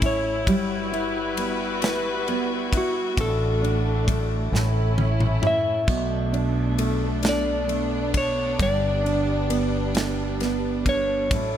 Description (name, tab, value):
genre	six-eight pop ballad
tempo	44 BPM (dotted quarters)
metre	6/8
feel	straight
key	unclear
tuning	A4 = 438 Hz
part	clean lap steel guitar	melody	0.0-11.6 s	F#4 to E5	-27 LUFS	left 1 dB	none
part	nylon-string guitar	accompaniment	0.0-11.6 s	G2 to E4	-27 LUFS	right 2 dB	none
part	dark studio string section	sustained chords	0.0-11.6 s	F#3 to B4	-29 LUFS	left 2 dB	none
part	mellow fretless electric bass	bass	0.0-11.6 s	G1 to B1	-27 LUFS	equal	none
part	modern studio drum kit	drums	0.0-11.5 s	kick drum, ride cymbal, snare drum, splash cymbal, toms	-28 LUFS	equal	none
room	light reverb, small room reverb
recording	none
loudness	-21 LUFS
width	side -10 dB against mid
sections	0.0-11.6 A section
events	drum fill 4.5-5.9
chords	0.5 Emadd9/G; 3.2 D/A; 4.5 A; 5.9 Bm7; 8.6 G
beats	| 0.47 1.82 | 3.17 4.53 | 5.89 7.24 | 8.60 9.95 | 11.31